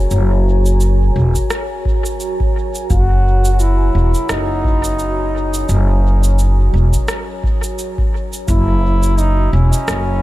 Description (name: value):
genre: ambient dub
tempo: 86 BPM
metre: 4/4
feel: swing 57% on 16ths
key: F# mixolydian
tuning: A4 = 440 Hz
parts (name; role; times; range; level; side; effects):
- deep dark ambient pad; sustained chords; 0.0-10.2 s; F#4 to A#5; -24 LUFS; equal; chorus, built-in reverb
- upright bass; bass; 0.0-10.2 s; E1 to F#1; -13 LUFS; equal; none
- electronic shaker and rim click; drums; 0.1-10.0 s; none; -26 LUFS; right 1 dB; dub echo
- electronic kick drum; drums; 1.4-8.6 s; none; -18 LUFS; equal; none
- clear trombone; melody; 2.9-10.2 s; C#4 to F#4; -21 LUFS; equal; dub echo
room: little or no reverb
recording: none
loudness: -13 LUFS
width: side -16 dB against mid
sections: 0.0-10.2 A section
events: none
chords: 0.0 F#add9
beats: | 0.11 0.81 1.51 2.21 | 2.90 3.60 4.30 5.00 | 5.69 6.39 7.09 7.79 | 8.48 9.18 9.88